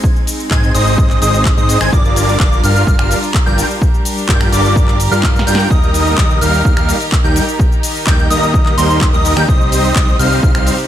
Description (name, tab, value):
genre	EDM, festival progressive house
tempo	127 BPM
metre	4/4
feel	straight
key	Eb major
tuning	A4 = 440 Hz
part	warm studio string section	sustained chords	0.0-10.9 s	C3 to Bb4	-23 LUFS	right 1 dB	sidechain pumping
part	electronic kick drum	drums	0.0-10.5 s	none	-14 LUFS	equal	none
part	house drum kit	drums	0.0-10.9 s	finger snaps, handclaps, hi-hat, shaker, snare drum	-20 LUFS	left 1 dB	none
part	plucky unison lead	arpeggios	0.5-10.7 s	C6 to Ab6	-20 LUFS	equal	sidechain pumping, digital delay
part	dense compressed supersaw	riff	0.5-10.7 s	G3 to Ab5	-17 LUFS	equal	cassette tape, sidechain pumping, digital delay
part	fat analog bass	bass	0.5-10.7 s	G1 to Ab2	-17 LUFS	equal	sidechain pumping
room	light reverb, digital ambience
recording	none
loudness	-10 LUFS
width	side -11 dB against mid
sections	0.0-10.9 A section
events	drum fill 5.2-5.7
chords	0.0 Ab; 1.9 Gm7; 5.7 Eb; 9.5 Cm